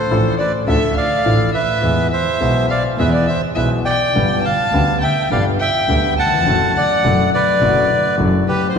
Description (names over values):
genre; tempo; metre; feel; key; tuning
tango; 104 BPM; 4/4; rubato; unclear; A4 = 440 Hz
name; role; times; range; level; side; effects
bandoneon; melody; 0.0-8.8 s; G4 to A5; -17 LUFS; right 1 dB; none
warm violin; second line; 0.0-8.8 s; B4 to A5; -24 LUFS; left 3 dB; none
clear concert grand piano; accompaniment; 0.1-8.8 s; G1 to A4; -20 LUFS; left 3 dB; none
dark double bass; bass; 0.1-8.8 s; F#1 to E2; -20 LUFS; right 1 dB; none
room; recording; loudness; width
wet concert hall reverb, RT60 2.5 s; recorded in a church or concert hall; -14 LUFS; side -6 dB against mid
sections
0.0-8.8 A section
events
none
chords
0.0 Dm; 1.8 E; 4.1 G; 6.5 D/F#